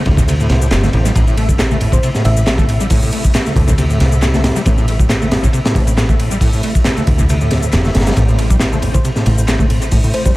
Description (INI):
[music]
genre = breakbeat, breaks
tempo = 137 BPM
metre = 4/4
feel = swing 54% on 16ths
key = A minor pentatonic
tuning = A4 = 440 Hz
[part]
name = percussive tonewheel organ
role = sustained chords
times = 0.0-10.4 s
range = C3 to E5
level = -25 LUFS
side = equal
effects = overdrive, chorus vibrato, slow rotary speaker, sidechain pumping
[part]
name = deep acid bass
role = riff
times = 0.1-10.3 s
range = A2 to A3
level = -19 LUFS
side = equal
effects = analog chorus, tape echo
[part]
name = overdriven picked electric bass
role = bass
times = 0.1-10.4 s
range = E1 to D2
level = -16 LUFS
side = equal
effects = none
[part]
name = crunchy breakbeat drum kit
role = drums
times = 0.1-10.4 s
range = hi-hat, kick drum, ride cymbal, snare drum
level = -15 LUFS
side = equal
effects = tape echo
[part]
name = congas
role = percussion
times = 0.1-10.1 s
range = none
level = -25 LUFS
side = equal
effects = none
[part]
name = house drum kit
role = drums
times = 0.2-10.3 s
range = handclaps, ride cymbal, shaker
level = -26 LUFS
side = left 1 dB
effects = tape echo
[part]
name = bell-like FM electric piano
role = melody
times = 1.9-2.7, 8.9-10.3 s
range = C5 to E5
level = -25 LUFS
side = equal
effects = chorus, telephone sound, tape echo
[sound]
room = small room ambience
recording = echo-heavy mix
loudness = -11 LUFS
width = side -19 dB against mid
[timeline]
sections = 0.0-10.4 A section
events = none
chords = 0.0 Am